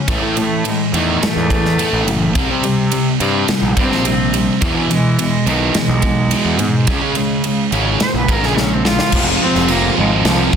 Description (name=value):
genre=quiet-loud alternative rock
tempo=106 BPM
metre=4/4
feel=straight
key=unclear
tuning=A4 = 441 Hz
part: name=rich cello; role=melody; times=0.0-10.5 s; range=Eb3 to C5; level=-21 LUFS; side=right 2 dB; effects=analog delay
part: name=distorted electric guitar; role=riff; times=0.0-10.6 s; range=E2 to Db4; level=-20 LUFS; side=left 10 dB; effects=distortion
part: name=heavy high-gain guitar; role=riff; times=0.1-10.6 s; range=E2 to Db4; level=-19 LUFS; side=right 11 dB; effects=distortion
part: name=fuzz picked electric bass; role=bass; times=0.1-10.5 s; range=F1 to E3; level=-20 LUFS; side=equal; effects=overdrive
part: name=big rock drum kit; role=drums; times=0.1-10.6 s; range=crash cymbal, kick drum, ride cymbal, snare drum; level=-20 LUFS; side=equal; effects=none
part: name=fuzz guitar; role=riff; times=9.1-10.6 s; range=F3 to F4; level=-21 LUFS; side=right 1 dB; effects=distortion
room=light reverb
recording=dense, heavily limited modern master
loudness=-13 LUFS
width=side -7 dB against mid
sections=0.0-9.1 A section; 9.1-10.6 B section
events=cello solo 0.0-9.1; drum fill 8.6-9.1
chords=0.1 A5; 2.4 C5; 4.6 E; 6.9 Db5; 9.1 Fm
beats=| 0.08 0.65 1.22 1.79 | 2.36 2.92 3.49 4.06 | 4.62 5.19 5.75 6.32 | 6.88 7.45 8.01 8.57 | 9.13 9.70 10.26